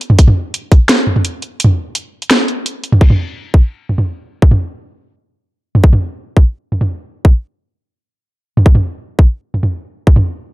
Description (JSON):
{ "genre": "drum and bass", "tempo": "170 BPM", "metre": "4/4", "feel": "half-time", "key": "none", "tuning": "none", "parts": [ { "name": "drum and bass drum kit", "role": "drums", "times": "0.0-10.2 s", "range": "crash cymbal, hi-hat, snare drum, toms", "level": "-12 LUFS", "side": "equal", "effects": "low-pass filter on hats, low-pass filter on toms, low-pass filter on snare, low-pass filter on cymbals" }, { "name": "electronic kick drum", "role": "drums", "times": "0.2-0.8, 3.0-10.1 s", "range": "none", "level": "-7 LUFS", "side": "equal", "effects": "none" } ], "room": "little or no reverb", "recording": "dark, warm production", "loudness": "-11 LUFS", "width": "side -18 dB against mid", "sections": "0.0-3.0 A section; 3.0-10.5 B section", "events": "break 1.6-3.0", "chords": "none" }